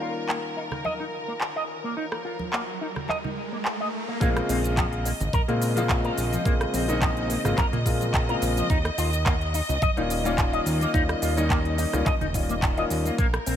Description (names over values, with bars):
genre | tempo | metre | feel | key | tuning
nu-disco, nu disco | 107 BPM | 4/4 | swing 54% on 16ths | unclear | A4 = 442 Hz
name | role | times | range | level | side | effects
warm grand piano | accompaniment | 0.0-13.2 s | Db3 to F4 | -29 LUFS | left 2 dB | ping-pong delay
clear studio violin section | sustained chords | 0.0-13.6 s | Bb4 to Eb5 | -33 LUFS | equal | vintage 12-bit sampler grit, sidechain pumping
electric guitar with an envelope filter | riff | 0.0-13.6 s | F3 to Eb5 | -31 LUFS | left 2 dB | wide subtle chorus, low-pass filter, ping-pong delay
riser | sound effects | 1.3-4.2 s | none | -36 LUFS | right 1 dB | none
pop drum kit | drums | 0.3-13.6 s | cabasa, handclaps, hi-hat, rim click | -31 LUFS | equal | none
congas | percussion | 0.7-12.3 s | none | -35 LUFS | right 5 dB | none
fat analog bass | bass | 4.2-13.6 s | Eb1 to Bb2 | -27 LUFS | right 1 dB | none
electronic kick drum | drums | 4.2-13.3 s | none | -25 LUFS | right 1 dB | none
room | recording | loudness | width
light reverb, digital ambience | none | -23 LUFS | side -10 dB against mid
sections
0.0-4.2 A section; 4.2-13.6 B section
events
riser 1.3-4.2; drop 4.2-13.6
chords
0.0 Eb7; 4.2 Bbm7; 8.7 Eb7